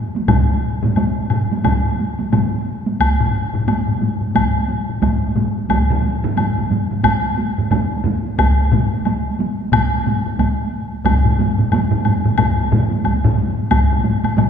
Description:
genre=japanese traditional, taiko drum ensemble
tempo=89 BPM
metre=4/4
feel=swing 60% on 16ths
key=none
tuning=none
part: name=taiko ensemble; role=percussion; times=0.1-14.5 s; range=none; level=-20 LUFS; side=right 2 dB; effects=none
part: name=taiko ensemble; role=percussion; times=0.3-14.5 s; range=none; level=-20 LUFS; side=left 3 dB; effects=none
part: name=taiko ensemble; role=percussion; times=0.3-13.4 s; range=none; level=-22 LUFS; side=right 3 dB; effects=none
part: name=taiko ensemble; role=percussion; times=0.3-13.9 s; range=none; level=-22 LUFS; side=equal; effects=none
part: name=woodblock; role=percussion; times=0.3-14.5 s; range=none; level=-23 LUFS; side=left 4 dB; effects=none
room=wet concert hall reverb, RT60 2.3 s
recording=heard from further back in the room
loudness=-15 LUFS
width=side -8 dB against mid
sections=0.0-3.0 A section; 3.0-13.7 B section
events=none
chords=none

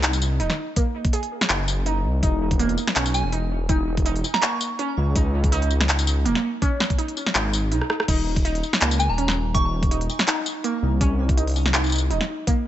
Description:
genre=half-time drum and bass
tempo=164 BPM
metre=4/4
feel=swing 54% on 16ths, half-time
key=Eb dorian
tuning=A4 = 444 Hz
part: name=warbly dusty pluck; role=arpeggios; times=0.0-12.6 s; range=Bb3 to Ab4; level=-27 LUFS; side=right 2 dB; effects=phaser, lush chorus, cassette tape, digital delay
part: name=dark detuned saw bass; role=bass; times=0.0-12.2 s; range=Eb1 to Db2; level=-23 LUFS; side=equal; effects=none
part: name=drum and bass drum kit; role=drums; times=0.0-12.6 s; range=crash cymbal, handclaps, hi-hat, rim click, snare drum, tambourine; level=-24 LUFS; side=equal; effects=none
part: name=electronic kick drum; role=drums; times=0.8-12.6 s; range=none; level=-22 LUFS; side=equal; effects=none
part: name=soft synth bell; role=melody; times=3.1-4.8, 9.0-9.8 s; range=G#5 to Db6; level=-30 LUFS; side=right 2 dB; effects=chorus, phaser, digital delay
room=light reverb, digital ambience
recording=nothing above 8.0 kHz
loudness=-20 LUFS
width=side -12 dB against mid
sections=0.0-12.7 A section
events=kick drops out 7.7-8.1; drum fill 7.8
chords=0.0 Ebm; 2.2 N.C.

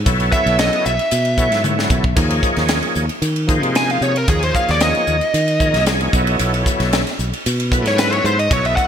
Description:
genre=electric jazz fusion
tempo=114 BPM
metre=4/4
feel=straight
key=unclear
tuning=A4 = 440 Hz
part: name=modern bright fingered electric bass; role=bass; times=0.0-8.7 s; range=B1 to Eb3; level=-20 LUFS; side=equal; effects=none
part: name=overdriven tonewheel organ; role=accompaniment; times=0.1-8.9 s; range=F3 to Bb5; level=-21 LUFS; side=equal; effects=slow rotary speaker, chorus vibrato
part: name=crisp fusion drum kit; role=drums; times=0.1-8.9 s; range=hi-hat, kick drum, ride cymbal, snare drum, splash cymbal, toms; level=-20 LUFS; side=equal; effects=gated reverb
part: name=bluesy overdriven lead guitar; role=melody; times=0.3-8.9 s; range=Ab4 to Ab5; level=-20 LUFS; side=equal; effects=distortion, ping-pong delay
room=light reverb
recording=bright 1980s-style digital production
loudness=-14 LUFS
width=side -8 dB against mid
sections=0.0-8.9 A section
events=lead electric guitar solo 0.0-8.9; drum fill 1.6-2.2; tonewheel organ fill 5.3-6.4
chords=0.0 B13sus4; 2.2 Eb13sus4; 6.1 B13sus4

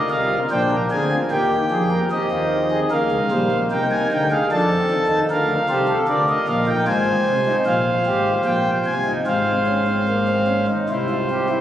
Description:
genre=classical, baroque-style 4-part fugue for pipe organ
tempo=75 BPM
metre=3/4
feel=straight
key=F minor from 6.9 s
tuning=A4 = 440 Hz
part: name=pipe organ, principal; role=solo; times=0.0-11.6 s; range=Ab1 to A5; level=-17 LUFS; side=equal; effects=none
room=wet cathedral reverb, RT60 4.5 s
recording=recorded on a phone in the room, studio reverb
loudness=-17 LUFS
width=side -11 dB against mid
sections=0.0-2.1 A section; 2.1-11.6 B section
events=none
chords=0.0 Bb7; 1.3 Eb; 2.1 Eb7; 3.7 Ab/C; 4.5 F7; 6.1 Bb/D; 6.9 Fm/Ab; 8.5 Bb13sus4; 9.3 Fm/Ab; 10.9 C

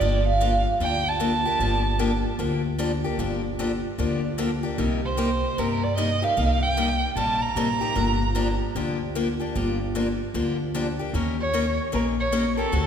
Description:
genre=acoustic string swing (jazz manouche)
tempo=151 BPM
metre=4/4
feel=swing 63% on 8ths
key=G minor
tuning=A4 = 440 Hz
part: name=warm violin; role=melody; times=0.0-2.3, 5.1-8.6, 11.4-12.9 s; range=A4 to Bb5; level=-25 LUFS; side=right 3 dB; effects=none
part: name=picked steel-string acoustic guitar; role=accompaniment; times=0.0-12.9 s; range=C3 to Bb4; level=-26 LUFS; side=left 3 dB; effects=none
part: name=upright bass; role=bass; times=0.0-12.9 s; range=G1 to G2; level=-27 LUFS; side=equal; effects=none
room=wet concert hall reverb, RT60 2.2 s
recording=recorded in a church or concert hall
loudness=-22 LUFS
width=side -8 dB against mid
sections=0.0-12.9 A section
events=none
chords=0.0 Gm7; 4.8 Cm7; 8.0 Gm7; 11.1 Eb7

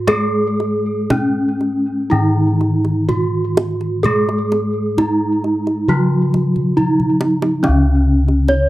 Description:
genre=Javanese gamelan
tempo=57-70 BPM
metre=4/4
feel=straight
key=unclear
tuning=A4 = 440 Hz
part: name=gamelan-type bronze metallophone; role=melody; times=0.0-8.7 s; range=Db4 to Db5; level=-18 LUFS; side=right 1 dB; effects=tape echo
part: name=gamelan-type bossed gongs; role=bass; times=0.0-8.7 s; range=Db2 to Ab4+25c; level=-19 LUFS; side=equal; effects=none
part: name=gamelan-type bronze metallophone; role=accompaniment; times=0.1-8.7 s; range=Db3 to Ab3+25c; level=-21 LUFS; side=left 1 dB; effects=none
part: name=kendang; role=percussion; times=0.1-8.7 s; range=none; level=-22 LUFS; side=right 1 dB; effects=none
room=moderate studio reverb, RT60 0.5 s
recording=none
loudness=-14 LUFS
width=side -16 dB against mid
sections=0.0-7.6 A section; 7.6-8.7 B section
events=drum fill 6.6-7.6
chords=none

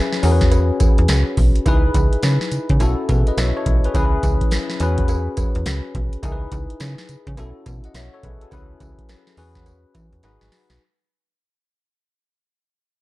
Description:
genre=R&B, new jack swing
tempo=105 BPM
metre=4/4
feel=swing 63% on 16ths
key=C# minor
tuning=A4 = 440 Hz
part: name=bell-like tine electric piano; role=accompaniment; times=0.0-10.8 s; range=C#4 to F#5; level=-24 LUFS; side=left 3 dB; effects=analog chorus
part: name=booming analog drum machine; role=drums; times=0.1-10.8 s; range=hi-hat, kick drum, snare drum, tambourine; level=-19 LUFS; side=equal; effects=vintage 12-bit sampler grit
part: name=slap-like FM bass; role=bass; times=0.2-10.8 s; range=G#1 to E3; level=-20 LUFS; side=equal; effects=none
part: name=cowbell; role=percussion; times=0.5-10.4 s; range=none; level=-35 LUFS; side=right 7 dB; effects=none
room=little or no reverb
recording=dark, warm production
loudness=-16 LUFS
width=side -18 dB against mid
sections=0.0-10.8 A section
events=fade-out 0.0-10.8; drum fill 10.2-10.8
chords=0.2 E6; 1.7 C#m7; 2.8 B7sus4; 3.9 C#m7; 4.8 E6; 6.2 C#m7; 7.4 B7sus4; 8.5 C#m7; 9.4 E6; 10.2 G#m7

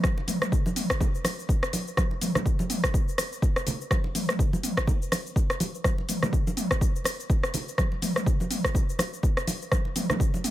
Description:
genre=house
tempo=124 BPM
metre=4/4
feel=swing 57% on 16ths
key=none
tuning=none
part: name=deep house drum kit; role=drums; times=0.0-10.5 s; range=hi-hat, rim click, shaker, toms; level=-28 LUFS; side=equal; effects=none
part: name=electronic kick drum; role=drums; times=0.0-10.3 s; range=none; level=-25 LUFS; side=equal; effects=none
part: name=congas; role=percussion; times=0.0-10.4 s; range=none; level=-32 LUFS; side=right 2 dB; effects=none
room=little or no reverb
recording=none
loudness=-24 LUFS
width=side -14 dB against mid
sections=0.0-10.5 A section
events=none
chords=none

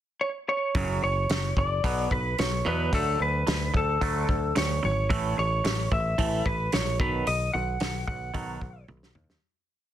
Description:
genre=quiet-loud alternative rock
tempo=110 BPM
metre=4/4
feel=straight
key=unclear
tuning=A4 = 440 Hz
part: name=lightly driven lead guitar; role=melody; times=0.2-8.8 s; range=A4 to F#5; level=-28 LUFS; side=equal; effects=slapback echo
part: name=picked electric bass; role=bass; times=0.7-9.4 s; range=F#1 to E2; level=-30 LUFS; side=equal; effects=none
part: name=loose indie drum kit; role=drums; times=0.7-9.4 s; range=hi-hat, kick drum, snare drum, toms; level=-29 LUFS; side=equal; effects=none
part: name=twangy electric guitar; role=arpeggios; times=0.8-9.4 s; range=F#2 to B3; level=-32 LUFS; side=right 4 dB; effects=phaser, slapback echo
room=little or no reverb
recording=dense, heavily limited modern master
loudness=-24 LUFS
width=side -11 dB against mid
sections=0.0-0.8 pickup bar; 0.8-9.4 verse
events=fade-out 7.3-9.4; drum fill 8.9-9.4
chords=0.0 N.C.; 0.8 F#5; 1.8 B5; 2.9 D; 5.1 A; 7.0 B

